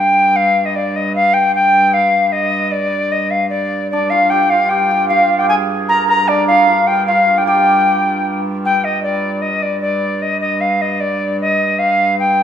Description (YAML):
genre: medieval dance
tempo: 153 BPM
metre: 3/4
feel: straight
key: G phrygian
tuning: A4 = 440 Hz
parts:
  - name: mellow alto recorder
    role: melody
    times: 0.0-12.4 s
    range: D5 to Bb5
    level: -13 LUFS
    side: left 2 dB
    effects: none
  - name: hammered dulcimer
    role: second line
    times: 0.0-1.2, 3.9-10.6 s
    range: D4 to Bb4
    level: -19 LUFS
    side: right 7 dB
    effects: none
  - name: warm hurdy-gurdy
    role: drone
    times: 0.0-12.4 s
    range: G2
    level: -23 LUFS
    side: right 2 dB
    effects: none
room: wet recital hall reverb, RT60 1.4 s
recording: minimal, uncompressed stereo recording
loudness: -12 LUFS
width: side -9 dB against mid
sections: 0.0-8.6 A section; 8.6-12.4 B section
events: none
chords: none